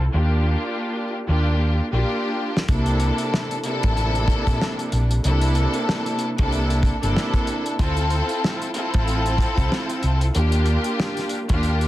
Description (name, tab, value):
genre	hip hop, boom-bap hip-hop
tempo	94 BPM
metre	4/4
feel	swing 59% on 16ths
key	unclear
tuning	A4 = 440 Hz
part	rich studio string section	accompaniment	0.0-11.9 s	C3 to A4	-23 LUFS	equal	high-pass filter, low-pass filter
part	hollow-body short-scale fingered electric bass	bass	0.0-11.9 s	G1 to Eb2	-20 LUFS	equal	none
part	cloth-damped thuddy drum kit	drums	2.6-11.9 s	hi-hat, kick drum, snare drum	-24 LUFS	equal	none
room	studio reverb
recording	dense, heavily limited modern master, vinyl crackle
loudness	-19 LUFS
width	side -15 dB against mid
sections	0.0-2.7 A section; 2.7-11.9 B section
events	drum fill 1.4-2.7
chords	0.1 Ebmaj9; 2.7 C13; 7.8 Dm7; 10.3 Ebmaj9